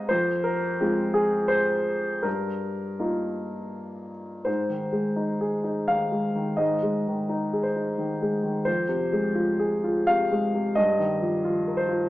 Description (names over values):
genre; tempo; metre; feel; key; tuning
neoclassical minimalist piano; 79-89 BPM; 3/4; rubato; Ab major; A4 = 440 Hz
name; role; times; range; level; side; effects
warm grand piano; solo; 0.0-12.1 s; F2 to F5; -23 LUFS; equal; none
room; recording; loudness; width
moderate stone room reverb, RT60 1.2 s; band playing live in one room, small speaker sound; -23 LUFS; side -16 dB against mid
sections
0.0-4.5 A section; 4.5-12.1 B section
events
none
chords
0.1 Fm; 2.3 Ebadd9/G; 4.5 Ab; 8.7 Fm; 10.8 Ebadd9/G